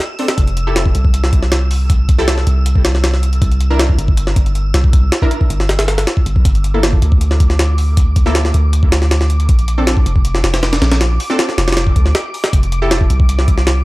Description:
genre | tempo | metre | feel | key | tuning
drum and bass, jungle | 158 BPM | 4/4 | straight | unclear | A4 = 440 Hz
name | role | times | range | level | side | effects
jungle sampler-style drum kit | drums | 0.0-13.8 s | hi-hat, kick drum, snare drum | -14 LUFS | equal | none
wind-like tuned noise texture | texture | 0.0-13.8 s | D6 to E6 | -29 LUFS | equal | built-in reverb
orchestra-hit-like synth stab | stabs | 0.2-13.0 s | Bb3 to Bb4 | -23 LUFS | equal | built-in reverb, dub echo
long sustained 808-style bass | bass | 0.4-13.8 s | F1 to D2 | -14 LUFS | equal | tube saturation
room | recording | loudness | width
digital ambience | dry, gritty hardware recording | -11 LUFS | side -20 dB against mid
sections
0.0-13.8 A section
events
none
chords
0.4 Fmaj9; 3.4 C7; 6.5 Gm69; 9.5 Bbmaj7; 12.5 Fmaj9

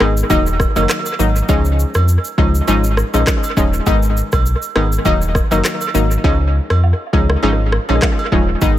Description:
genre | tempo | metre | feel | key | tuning
afrobeats | 101 BPM | 4/4 | swing 55% on 16ths | unclear | A4 = 441 Hz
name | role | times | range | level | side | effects
analog pluck | accompaniment | 0.0-8.8 s | Eb3 to Eb4 | -18 LUFS | left 2 dB | chorus, dub echo
sub bass with octave | bass | 0.0-8.8 s | Eb1 to F2 | -16 LUFS | equal | none
afro-pop drum kit | drums | 0.0-8.8 s | handclaps, kick drum, rim click, shaker | -18 LUFS | equal | overdrive, dub echo
agogo bells and woodblock | percussion | 0.0-8.8 s | none | -25 LUFS | right 8 dB | dub echo
room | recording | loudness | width
digital ambience | echo-heavy mix | -13 LUFS | side -13 dB against mid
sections
0.0-8.8 A section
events
hi-hats muted 6.2-8.6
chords
0.3 Ebm; 1.5 Dbadd9; 3.9 Abm; 5.1 Ebm; 6.2 Dbadd9

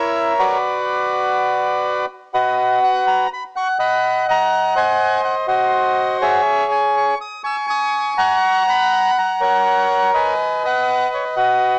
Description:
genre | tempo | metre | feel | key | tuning
tango | 123 BPM | 4/4 | rubato | B major | A4 = 445 Hz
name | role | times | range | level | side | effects
bandoneon | solo | 0.0-11.8 s | E4 to E6 | -18 LUFS | equal | cassette tape
room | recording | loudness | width
moderate spring reverb, RT60 1.3 s, studio reverb | home recording on cassette, small speaker sound | -18 LUFS | mono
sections
0.0-2.6 A section; 2.6-11.8 B section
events
none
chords
0.0 F#7; 0.6 Bm; 2.6 B; 4.5 G#7; 6.5 C#5/G#; 8.4 F#; 10.4 B

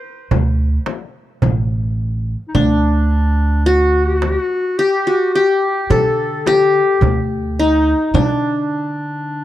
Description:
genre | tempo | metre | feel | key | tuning
Turkish makam ensemble | 107 BPM (eighths) | 10/8 | straight | D makam hicaz | A4 = 440 Hz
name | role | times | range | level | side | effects
qanun | melody | 0.0-9.4 s | D4 to C5 | -16 LUFS | left 1 dB | none
mellow clarinet | second line | 0.0-9.4 s | D4 to A4 | -22 LUFS | left 2 dB | none
upright bass | bass | 0.3-9.4 s | A1 to D3 | -18 LUFS | right 1 dB | none
darbuka | percussion | 0.3-8.8 s | none | -20 LUFS | right 4 dB | none
frame drum | percussion | 0.3-8.4 s | none | -24 LUFS | left 7 dB | none
room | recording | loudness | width
light reverb, studio ambience | dry, close 1970s-style studio recording | -14 LUFS | side -13 dB against mid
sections
0.0-9.4 A section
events
none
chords
none

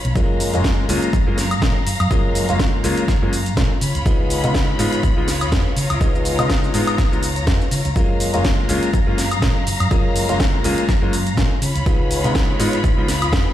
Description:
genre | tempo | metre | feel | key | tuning
filtered disco house | 123 BPM | 4/4 | swing 55% on 16ths | F# major | A4 = 440 Hz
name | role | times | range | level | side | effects
warm symphonic string section | sustained chords | 0.0-13.5 s | F#3 to B5 | -26 LUFS | left 1 dB | sidechain pumping, low-pass filter
hollow-body short-scale fingered electric bass | bass | 0.0-13.4 s | F#1 to C#3 | -22 LUFS | equal | sidechain pumping, low-pass filter
house drum kit | drums | 0.0-13.4 s | hi-hat, shaker, snare drum, woodblock | -24 LUFS | left 1 dB | overdrive, sidechain pumping on hats, sidechain pumping on perc
warm grand piano | accompaniment | 0.2-13.4 s | G#3 to E#4 | -22 LUFS | left 1 dB | phaser, sidechain pumping, low-pass filter
electronic kick drum | drums | 0.2-13.4 s | none | -19 LUFS | equal | none
room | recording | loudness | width
light reverb | played on a big sound system in a bare room, stone room reverb | -16 LUFS | side -12 dB against mid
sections
0.0-13.5 A section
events
none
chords
0.2 F#maj7; 3.8 C#7; 8.0 F#maj7; 11.6 C#7

